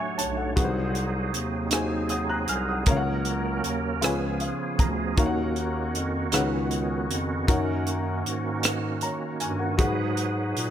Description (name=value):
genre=slow gospel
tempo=52 BPM (dotted quarters)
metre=6/8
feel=straight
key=F# major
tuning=A4 = 439 Hz
part: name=warm upright piano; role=accompaniment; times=0.0-10.7 s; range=G#2 to F#6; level=-29 LUFS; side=left 3 dB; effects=none
part: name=bright tonewheel organ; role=sustained chords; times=0.0-10.7 s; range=D#3 to C#5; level=-30 LUFS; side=right 4 dB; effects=fast rotary speaker, chorus vibrato
part: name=mellow bass clarinet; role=bass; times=0.2-10.7 s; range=B1 to A#2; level=-30 LUFS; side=equal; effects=none
part: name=crisp fusion drum kit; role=drums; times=0.2-10.7 s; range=hi-hat, kick drum, rim click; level=-26 LUFS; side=equal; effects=none
room=light reverb, studio reverb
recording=none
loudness=-24 LUFS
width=side -10 dB against mid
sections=0.0-10.7 A section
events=upright piano fill 0.0-0.6, 4.0-5.2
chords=0.0 Dmaj7; 0.6 G#7/B#; 2.9 F#/C#; 4.0 C#7; 5.2 D#m7; 6.3 C#9sus4; 7.5 F#6; 9.8 G#m7